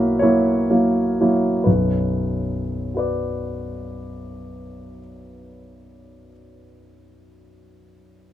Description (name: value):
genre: classical, romantic nocturne for solo piano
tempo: 38-48 BPM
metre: 4/4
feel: rubato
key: unclear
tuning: A4 = 439 Hz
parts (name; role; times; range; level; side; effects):
- warm grand piano; solo; 0.0-8.3 s; B1 to D5; -19 LUFS; equal; none
room: little or no reverb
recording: close, detailed microphones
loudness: -18 LUFS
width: side -12 dB against mid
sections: 0.0-1.7 A section; 1.7-6.9 B section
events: slowing down 0.0-1.7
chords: 0.0 F#7/B; 1.7 Bm